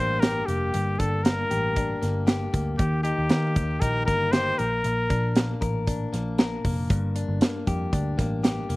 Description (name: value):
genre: jangly indie pop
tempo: 117 BPM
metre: 4/4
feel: straight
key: G minor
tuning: A4 = 439 Hz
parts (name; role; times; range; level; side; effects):
- warm trumpet; melody; 0.0-5.6 s; G4 to C5; -26 LUFS; left 1 dB; slapback echo
- direct-recorded clean electric guitar; arpeggios; 0.0-8.8 s; G2 to Bb4; -30 LUFS; left 2 dB; none
- vintage muted picked electric bass; bass; 0.0-8.8 s; F1 to Eb3; -28 LUFS; equal; none
- modern studio drum kit; drums; 0.2-8.8 s; hi-hat, kick drum, snare drum; -24 LUFS; right 1 dB; none
room: little or no reverb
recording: recorded outdoors, with no room sound, vinyl crackle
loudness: -22 LUFS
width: side -20 dB against mid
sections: 0.0-8.8 A section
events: none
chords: 0.0 Gm; 2.8 Eb; 4.6 Bb; 6.9 Gm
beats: 0.23 | 0.74 1.25 1.77 2.28 | 2.79 3.31 3.82 4.33 | 4.85 5.36 5.87 6.39 | 6.90 7.41 7.93 8.44